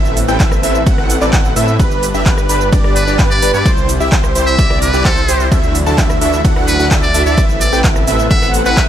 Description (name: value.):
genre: EDM, festival progressive house.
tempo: 129 BPM.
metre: 4/4.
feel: straight.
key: unclear.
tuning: A4 = 440 Hz.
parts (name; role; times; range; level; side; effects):
lush unison pad; sustained chords; 0.0-8.9 s; C3 to B4; -23 LUFS; equal; chorus, sidechain pumping.
wide unison lead; arpeggios; 0.0-8.9 s; B4 to A5; -19 LUFS; right 1 dB; sidechain pumping, dub echo.
supersaw stab; riff; 0.0-8.9 s; C4 to A5; -19 LUFS; equal; sidechain pumping, dub echo.
detuned saw bass; bass; 0.0-8.9 s; G1 to A2; -18 LUFS; equal; sidechain pumping.
big-room dance drum kit; drums; 0.1-8.9 s; cabasa, handclaps, hi-hat, ride cymbal, rim click; -21 LUFS; right 1 dB; overdrive.
electronic kick drum; drums; 0.4-8.9 s; none; -14 LUFS; equal; overdrive.
trumpet with metal mute; melody; 3.0-8.9 s; A4 to E5; -18 LUFS; equal; dub echo.
room: light reverb.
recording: none.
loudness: -10 LUFS.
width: side -10 dB against mid.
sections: 0.0-8.9 A section.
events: none.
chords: 0.0 Amadd9; 1.8 G; 3.7 C; 5.5 Dadd9; 7.4 Amadd9.